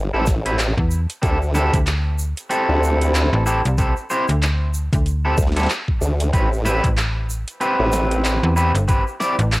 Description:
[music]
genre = glitch hop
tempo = 94 BPM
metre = 4/4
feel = swing 58% on 16ths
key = A minor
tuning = A4 = 439 Hz
[part]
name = formant-sweep wobble bass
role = bass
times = 0.0-8.4 s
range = G1 to D2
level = -19 LUFS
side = equal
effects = chorus, tube saturation
[part]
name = electric guitar at the edge of break-up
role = stabs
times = 0.1-9.4 s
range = C4 to D5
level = -21 LUFS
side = equal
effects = sidechain pumping, cassette tape, analog delay
[part]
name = dubstep drum kit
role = drums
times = 0.3-9.6 s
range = handclaps, hi-hat, snare drum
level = -25 LUFS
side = equal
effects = none
[part]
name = electronic kick drum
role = drums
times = 0.3-9.0 s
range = none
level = -20 LUFS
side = equal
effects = none
[part]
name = egg shaker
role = percussion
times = 0.3-9.6 s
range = none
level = -35 LUFS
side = right 2 dB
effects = none
[part]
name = slap-like FM bass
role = bass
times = 0.8-9.6 s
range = G1 to E2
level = -19 LUFS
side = equal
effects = none
[sound]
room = little or no reverb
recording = home recording on cassette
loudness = -17 LUFS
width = side -20 dB against mid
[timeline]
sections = 0.0-9.6 A section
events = none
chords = 0.0 Am7; 1.2 D9sus4; 6.3 Am7

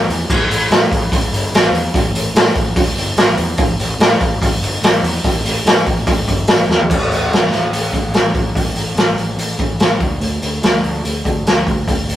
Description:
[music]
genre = hard rock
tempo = 145 BPM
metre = 4/4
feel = straight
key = unclear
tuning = A4 = 440 Hz
[part]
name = fuzz picked electric bass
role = bass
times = 0.0-12.2 s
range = G1 to A2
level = -21 LUFS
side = equal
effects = overdrive
[part]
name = raw garage drum kit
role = drums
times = 0.1-12.2 s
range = crash cymbal, hi-hat, kick drum, snare drum, toms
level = -14 LUFS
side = equal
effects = none
[sound]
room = little or no reverb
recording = rough rehearsal-room recording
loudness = -13 LUFS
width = side -12 dB against mid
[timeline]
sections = 0.0-6.9 A section; 6.9-12.2 B section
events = drum fill 6.7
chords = none

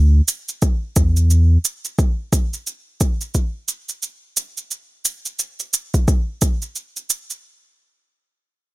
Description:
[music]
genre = organic downtempo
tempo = 88 BPM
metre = 4/4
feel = swing 60% on 16ths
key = unclear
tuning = A4 = 440 Hz
[part]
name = warm sub bass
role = bass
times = 0.0-1.6 s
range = D2 to E2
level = -12 LUFS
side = equal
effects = tube saturation, sidechain pumping
[part]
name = shaker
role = drums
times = 0.3-7.4 s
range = none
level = -21 LUFS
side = right 4 dB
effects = overdrive
[part]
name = electronic kick drum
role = drums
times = 0.6-6.6 s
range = none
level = -17 LUFS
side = equal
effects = overdrive
[sound]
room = little or no reverb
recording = none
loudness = -18 LUFS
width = side -20 dB against mid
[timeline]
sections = 0.0-7.4 A section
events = none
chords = none

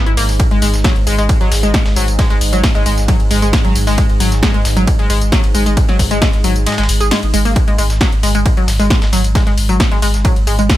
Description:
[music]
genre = driving peak-time techno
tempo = 134 BPM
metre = 4/4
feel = straight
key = unclear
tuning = A4 = 436 Hz
[part]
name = analog pluck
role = riff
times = 0.0-10.6 s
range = F#3 to G#4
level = -18 LUFS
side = left 1 dB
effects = chorus, overdrive, sidechain pumping, tape echo
[part]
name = analog drone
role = drone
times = 0.0-10.8 s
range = G#2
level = -23 LUFS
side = equal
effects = wide subtle chorus, sidechain pumping
[part]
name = warm sub bass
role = bass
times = 0.1-10.7 s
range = G#1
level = -17 LUFS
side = equal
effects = tube saturation, sidechain pumping, low-pass filter
[part]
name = dusty soul sampler-style drum kit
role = drums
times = 0.1-10.8 s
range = hi-hat, snare drum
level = -28 LUFS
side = equal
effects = none
[part]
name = punchy analog drum machine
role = drums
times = 0.1-10.8 s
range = hi-hat, ride cymbal, snare drum, tambourine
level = -20 LUFS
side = left 1 dB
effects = overdrive
[part]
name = electronic kick drum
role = drums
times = 0.4-10.8 s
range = none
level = -14 LUFS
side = equal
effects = none
[sound]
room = light reverb, digital ambience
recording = none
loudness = -11 LUFS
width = side -14 dB against mid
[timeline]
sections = 0.0-10.8 A section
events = kick drops out 6.7-7.6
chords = 0.0 G#7(no3)

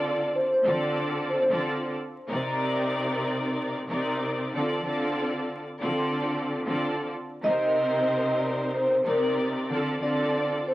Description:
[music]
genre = hip hop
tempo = 93 BPM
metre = 4/4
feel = swing 60% on 16ths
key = unclear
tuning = A4 = 440 Hz
[part]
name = vibraphone with soft mallets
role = melody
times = 0.0-1.5, 7.4-10.7 s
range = Bb4 to Eb5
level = -25 LUFS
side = equal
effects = high-pass filter, low-pass filter, tape echo
[part]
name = clear studio string section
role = accompaniment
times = 0.0-10.7 s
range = C3 to D5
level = -26 LUFS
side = equal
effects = high-pass filter, low-pass filter
[sound]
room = light reverb, small room ambience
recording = dry, gritty hardware recording, vinyl crackle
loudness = -24 LUFS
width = side -16 dB against mid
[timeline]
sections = 0.0-10.7 A section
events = none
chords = 0.0 Dm7; 2.3 Cm7; 4.5 Dm7; 7.4 Cm7; 9.7 Dm7

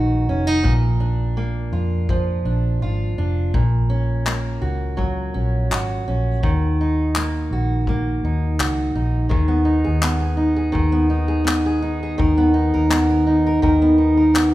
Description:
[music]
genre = acoustic pop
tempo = 83 BPM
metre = 4/4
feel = swing 55% on 16ths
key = unclear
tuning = A4 = 440 Hz
[part]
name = fingerpicked steel-string acoustic guitar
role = accompaniment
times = 0.0-14.5 s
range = Bb2 to A#4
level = -20 LUFS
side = equal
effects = none
[part]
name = vintage muted fingered electric bass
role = bass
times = 0.0-14.5 s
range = F1 to F2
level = -21 LUFS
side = equal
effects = none
[part]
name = natural country drum kit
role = drums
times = 0.6-14.5 s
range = handclaps, kick drum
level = -23 LUFS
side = left 2 dB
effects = none
[sound]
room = moderate recital hall reverb, RT60 1.6 s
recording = recorded in a church or concert hall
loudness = -17 LUFS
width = side -16 dB against mid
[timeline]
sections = 0.0-9.3 A section; 9.3-14.5 B section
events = none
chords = 0.0 B; 0.7 Bb; 3.5 Gb/Bb; 6.4 Ebm; 9.3 Abm/Eb; 12.2 Bmaj7/D#

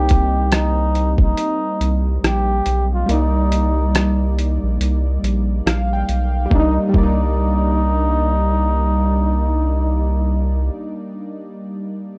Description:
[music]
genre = lo-fi hip hop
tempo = 70 BPM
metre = 4/4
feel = swing 60% on 16ths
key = C minor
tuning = A4 = 440 Hz
[part]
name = breathy flugelhorn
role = melody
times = 0.0-10.7 s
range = Eb4 to G4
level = -25 LUFS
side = equal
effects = analog delay
[part]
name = warm analog keys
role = accompaniment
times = 0.0-12.2 s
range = G3 to G5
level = -25 LUFS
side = equal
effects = chorus
[part]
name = soft dub sub bass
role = bass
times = 0.0-10.7 s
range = Bb1 to C2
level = -21 LUFS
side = equal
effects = none
[part]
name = lo-fi sampler-style drum kit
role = drums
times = 0.1-7.2 s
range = hi-hat, kick drum, rim click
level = -21 LUFS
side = equal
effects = overdrive
[sound]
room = light reverb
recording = dark, warm production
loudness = -18 LUFS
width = mono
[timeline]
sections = 0.0-6.5 A section; 6.5-9.9 B section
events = kick muted 3.1-6.5; synth keys fill 5.2-6.5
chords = 0.0 Cm7; 3.1 Cm9

